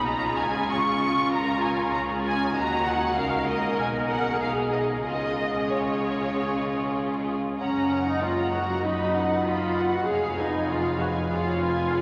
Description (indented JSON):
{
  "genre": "quick classical-period movement for string orchestra",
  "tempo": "97 BPM",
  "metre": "4/4",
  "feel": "straight",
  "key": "unclear",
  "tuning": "A4 = 440 Hz",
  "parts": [
    { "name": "rich studio violin section", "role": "melody", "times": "0.0-12.0 s", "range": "C#5 to C#6", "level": "-31 LUFS", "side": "equal", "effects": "none" },
    { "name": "rich studio violin section", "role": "second line", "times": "0.0-12.0 s", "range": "C#4 to A#5", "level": "-35 LUFS", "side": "equal", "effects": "none" },
    { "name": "warm studio viola section", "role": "accompaniment", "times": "0.0-12.0 s", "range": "C#4 to A#4", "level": "-30 LUFS", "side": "equal", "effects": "none" },
    { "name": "bright studio double bass section", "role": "bass", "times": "0.0-12.0 s", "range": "E#1 to D#2", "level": "-36 LUFS", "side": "equal", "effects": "none" },
    { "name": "clear studio cello section", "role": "bass", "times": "0.0-12.0 s", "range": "E#2 to D#3", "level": "-33 LUFS", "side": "equal", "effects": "none" }
  ],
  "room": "wet cathedral reverb, RT60 6.8 s",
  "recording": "vinyl crackle",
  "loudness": "-26 LUFS",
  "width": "mono",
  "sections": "0.0-7.6 A section; 7.6-12.0 B section",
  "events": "none",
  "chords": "0.1 C#; 2.6 D#m; 3.8 G#m/B; 5.0 C#; 7.6 F#; 8.8 B/F#; 10.1 C#7/E#"
}